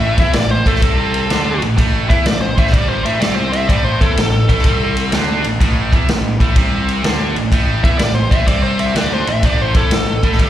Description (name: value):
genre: blues rock power trio and southern rock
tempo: 125 BPM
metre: 4/4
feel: swing 67% on 8ths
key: A minor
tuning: A4 = 445 Hz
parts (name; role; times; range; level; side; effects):
- bluesy overdriven lead guitar; melody; 0.0-4.9, 7.8-10.5 s; A4 to E5; -20 LUFS; left 1 dB; distortion, slapback echo, tape echo
- tight distorted guitar; riff; 0.0-10.5 s; G2 to E4; -19 LUFS; right 1 dB; distortion, slapback echo
- fuzz picked electric bass; bass; 0.0-10.5 s; G1 to E2; -19 LUFS; equal; overdrive
- vintage drum kit; drums; 0.2-10.5 s; kick drum, ride cymbal, snare drum; -16 LUFS; equal; none
room: small room ambience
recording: live gig heard through the venue's PA, recital hall reverb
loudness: -12 LUFS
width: side -12 dB against mid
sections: 0.0-10.5 A section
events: lead electric guitar solo 0.0-10.5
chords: 0.0 Am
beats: 0.34 0.82 1.30 | 1.78 2.25 2.73 3.21 | 3.69 4.17 4.65 5.12 | 5.60 6.08 6.56 7.04 | 7.52 8.00 8.47 8.95 | 9.43 9.91 10.39